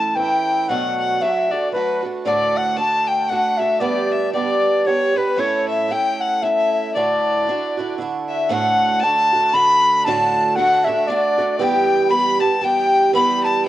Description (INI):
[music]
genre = celtic folk, Celtic waltz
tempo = 115 BPM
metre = 3/4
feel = swing 58% on 8ths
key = D major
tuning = A4 = 440 Hz
[part]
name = bright baroque flute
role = melody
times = 0.0-13.7 s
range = B4 to B5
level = -18 LUFS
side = left 1 dB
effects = none
[part]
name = bright fiddle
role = second line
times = 0.0-13.7 s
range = B4 to B5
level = -25 LUFS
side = left 7 dB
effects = cassette tape
[part]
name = picked swing-style acoustic guitar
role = accompaniment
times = 0.0-13.7 s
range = D2 to A4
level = -22 LUFS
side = right 5 dB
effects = cassette tape
[sound]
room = moderate spring reverb, RT60 1.8 s, small room ambience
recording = home recording on cassette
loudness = -16 LUFS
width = side -14 dB against mid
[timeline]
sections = 0.0-8.5 A section; 8.5-13.7 B section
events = none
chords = 0.0 A; 0.7 Bm7; 2.3 D; 3.8 G; 5.4 A; 7.0 Dadd9; 8.5 D; 11.6 Em